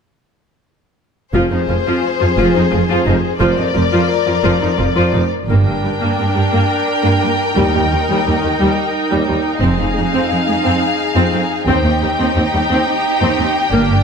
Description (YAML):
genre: cinematic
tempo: 58 BPM (dotted quarters)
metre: 6/8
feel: straight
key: F dorian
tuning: A4 = 440 Hz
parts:
  - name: clear studio violin section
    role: second line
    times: 1.3-14.0 s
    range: G4 to G5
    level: -18 LUFS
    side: left 4 dB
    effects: none
  - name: clear symphonic viola section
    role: accompaniment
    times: 1.3-14.0 s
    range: Eb3 to F4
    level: -17 LUFS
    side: equal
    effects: none
  - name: rich symphonic cello section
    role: bass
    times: 1.3-14.0 s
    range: Eb2 to G2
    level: -19 LUFS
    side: right 2 dB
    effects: none
  - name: rich symphonic double bass section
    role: bass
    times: 1.4-13.9 s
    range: F1 to Eb2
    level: -19 LUFS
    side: right 2 dB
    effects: none
room: moderate scoring stage reverb, RT60 1.8 s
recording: none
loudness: -13 LUFS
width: side -6 dB against mid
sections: 1.4-5.5 A section; 5.5-14.0 B section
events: build-up 5.5-14.0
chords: 1.4 Fm; 5.5 Gm; 7.6 Eb; 9.6 Fm7; 11.7 Cm/Eb